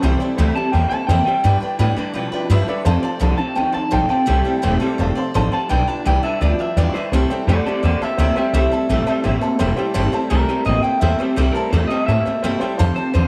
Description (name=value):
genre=rockabilly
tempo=169 BPM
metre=4/4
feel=straight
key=C major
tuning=A4 = 440 Hz
part: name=picked steel-string acoustic guitar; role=accompaniment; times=0.0-13.3 s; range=C3 to D5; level=-28 LUFS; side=equal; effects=none
part: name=warm upright piano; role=accompaniment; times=0.0-13.3 s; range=B4 to C6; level=-29 LUFS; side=equal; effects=none
part: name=electric guitar through a small old amp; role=riff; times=0.0-13.3 s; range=F2 to Bb3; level=-25 LUFS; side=equal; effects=ensemble chorus
part: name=upright bass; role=bass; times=0.0-13.3 s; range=E1 to B2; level=-21 LUFS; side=equal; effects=none
part: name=electric guitar through a small old amp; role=melody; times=0.6-13.3 s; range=G4 to C6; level=-24 LUFS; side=equal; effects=tape echo
room=light reverb, studio reverb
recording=none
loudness=-18 LUFS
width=mono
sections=0.0-7.1 A section; 7.1-13.3 A section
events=none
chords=0.0 C6; 1.4 G6; 2.9 F6; 4.3 C6; 5.0 F6; 5.7 G6; 7.1 C6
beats=| 0.03 0.38 0.73 1.09 | 1.44 1.80 2.15 2.50 | 2.86 3.21 3.57 3.92 | 4.28 4.63 4.99 5.34 | 5.70 6.05 6.41 6.76 | 7.12 7.47 7.83 8.18 | 8.54 8.89 9.25 9.60 | 9.96 10.31 10.66 11.02 | 11.37 11.73 12.08 12.44 | 12.79 13.14